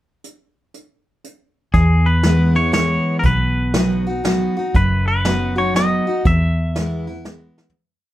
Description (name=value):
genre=honky-tonk and classic country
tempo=120 BPM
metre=3/4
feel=swing 64% on 8ths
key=E major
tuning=A4 = 440 Hz
part: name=vintage brush drum kit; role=drums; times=0.2-7.8 s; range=hi-hat, kick drum, snare drum, toms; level=-20 LUFS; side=equal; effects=none
part: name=twangy electric guitar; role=melody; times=1.7-7.0 s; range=G#4 to E5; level=-22 LUFS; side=left 1 dB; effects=none
part: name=picked steel-string acoustic guitar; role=accompaniment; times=1.7-7.7 s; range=E2 to F#4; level=-19 LUFS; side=equal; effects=none
part: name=vintage muted fingered electric bass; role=bass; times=1.7-7.5 s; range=F#1 to E2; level=-20 LUFS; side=equal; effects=none
room=wet studio reverb, RT60 0.6 s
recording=heard from further back in the room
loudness=-15 LUFS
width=side -14 dB against mid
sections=0.2-1.7 pickup bar; 1.7-7.8 A section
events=fade-out 6.3-7.8; drum fill 7.5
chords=0.2 N.C.; 1.7 E; 3.2 B; 6.3 E